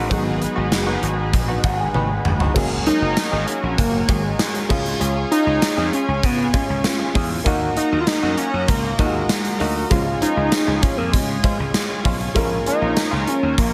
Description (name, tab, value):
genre	1980s-style pop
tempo	98 BPM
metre	4/4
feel	straight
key	F# major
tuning	A4 = 435 Hz
part	warm baby grand piano	accompaniment	0.0-13.7 s	F#3 to B5	-29 LUFS	equal	none
part	lush unison pad	sustained chords	0.0-13.7 s	G#3 to A#5	-31 LUFS	equal	chorus
part	direct-recorded clean electric guitar	riff	0.0-13.6 s	E#3 to G#4	-32 LUFS	equal	lush chorus, tape echo
part	gritty slap bass	bass	0.0-13.7 s	F#1 to C#3	-26 LUFS	equal	overdrive
part	gated 80s drum kit	drums	0.1-13.7 s	crash cymbal, hi-hat, kick drum, snare drum, tambourine, toms	-24 LUFS	equal	none
part	unison lead	melody	2.9-13.7 s	G#3 to E#4	-24 LUFS	equal	none
room	light reverb, studio reverb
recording	none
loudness	-20 LUFS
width	mono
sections	0.0-2.6 A section; 2.6-13.7 B section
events	grand piano fill 1.3-2.6; drum fill 1.9-2.6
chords	0.0 G#m7; 2.6 F#add9; 4.7 C#; 7.5 D#m; 9.9 C#; 12.4 A#m7